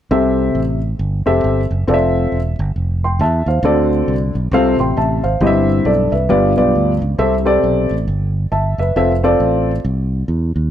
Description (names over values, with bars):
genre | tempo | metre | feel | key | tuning
uptempo gospel | 135 BPM | 4/4 | swing 61% on 8ths | C major | A4 = 440 Hz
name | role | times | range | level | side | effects
dark concert grand piano | accompaniment | 0.1-9.7 s | G2 to C6 | -15 LUFS | left 1 dB | none
fingered electric bass | bass | 0.1-10.7 s | E1 to E2 | -18 LUFS | right 1 dB | none
room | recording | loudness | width
light reverb | none | -14 LUFS | side -10 dB against mid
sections
0.1-7.2 A section; 7.2-10.7 B section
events
none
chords
0.1 C6; 1.9 Fmaj7; 3.6 D7; 4.5 F; 5.4 C/G; 6.3 G7; 7.2 C6; 9.0 Fmaj7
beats
| 0.11 0.55 0.99 1.44 | 1.88 2.32 2.76 3.20 | 3.65 4.09 4.53 4.97 | 5.42 5.86 6.30 6.75 | 7.19 7.63 8.08 8.52 | 8.96 9.41 9.85 10.29